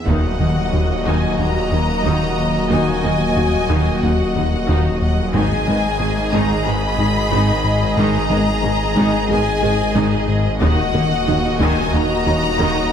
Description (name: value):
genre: cinematic, hybrid orchestral and electronic film score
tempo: 91 BPM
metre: 4/4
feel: straight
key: Eb minor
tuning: A4 = 441 Hz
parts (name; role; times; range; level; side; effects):
- rich symphonic violin section; melody; 0.0-12.9 s; Gb5 to Cb6; -24 LUFS; left 4 dB; none
- warm analog pad; sustained chords; 0.0-12.9 s; Eb3 to Eb5; -22 LUFS; left 1 dB; chorus
- rich symphonic violin section; second line; 0.1-12.9 s; Gb4 to Eb5; -25 LUFS; left 1 dB; none
- rich symphonic viola section; accompaniment; 0.1-12.9 s; Eb3 to Eb4; -26 LUFS; right 1 dB; none
- resonant blip pluck; arpeggios; 0.1-12.8 s; Eb3 to Ab4; -28 LUFS; right 2 dB; none
- smooth gliding synth bass; riff; 0.1-12.8 s; Eb2 to Ab3; -21 LUFS; left 2 dB; none
- rich symphonic cello section; bass; 0.1-12.7 s; Eb2 to Ab2; -27 LUFS; right 3 dB; none
- warm symphonic double bass section; bass; 0.1-12.7 s; Ab1 to Eb2; -26 LUFS; right 3 dB; none
- wide detuned saw bass; bass; 0.1-12.9 s; Eb1 to Ab1; -25 LUFS; equal; chorus
- taiko ensemble; drums; 0.1-1.3, 5.3-6.6, 10.6-12.2 s; none; -26 LUFS; equal; none
room: moderate scoring stage reverb, RT60 1.9 s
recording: none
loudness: -15 LUFS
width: side -8 dB against mid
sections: 0.1-12.9 A section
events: none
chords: 0.1 Ebm; 5.3 Abm; 10.6 Ebm